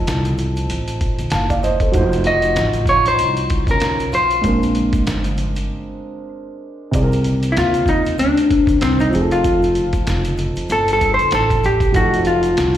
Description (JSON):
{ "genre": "hip hop, jazz-hop", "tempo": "96 BPM", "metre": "4/4", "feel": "swing 58% on 16ths", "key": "unclear", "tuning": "A4 = 440 Hz", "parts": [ { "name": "vintage hollow-body jazz guitar", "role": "melody", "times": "0.0-12.8 s", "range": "C4 to Eb5", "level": "-16 LUFS", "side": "left 1 dB", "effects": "plate reverb, slapback echo" }, { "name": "clean electric guitar", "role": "second line", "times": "0.0-6.3 s", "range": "Db4 to A4", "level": "-29 LUFS", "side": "right 1 dB", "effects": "plate reverb, slapback echo" }, { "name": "dark baby grand piano", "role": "accompaniment", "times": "0.0-12.8 s", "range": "C3 to A5", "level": "-22 LUFS", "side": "right 2 dB", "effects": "plate reverb" }, { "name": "upright bass", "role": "bass", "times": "0.0-12.8 s", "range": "F1 to Eb2", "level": "-21 LUFS", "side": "equal", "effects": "none" }, { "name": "trip hop sampler-style drum kit", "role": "drums", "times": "0.1-12.8 s", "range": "hi-hat, kick drum, snare drum", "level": "-22 LUFS", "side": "equal", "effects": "none" }, { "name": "congas and egg shaker", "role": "percussion", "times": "0.1-12.8 s", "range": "none", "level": "-32 LUFS", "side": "left 1 dB", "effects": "none" } ], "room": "moderate club reverb, RT60 0.5 s", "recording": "live gig heard through the venue's PA, recital hall reverb", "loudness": "-14 LUFS", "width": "side -11 dB against mid", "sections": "0.0-6.9 A section; 6.9-12.8 B section", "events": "break 5.7-6.9; hollow-body jazz guitar solo 6.9-12.8", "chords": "0.0 F7; 1.9 F7b9; 4.4 Bb9; 6.9 Cm9; 9.1 F7; 11.9 F7b9", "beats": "0.07 0.69 1.32 | 1.94 2.57 3.19 3.82 | 4.44 5.07 5.69 6.32 | 6.94 7.57 8.19 8.82 | 9.44 10.07 10.69 11.32 | 11.94 12.57" }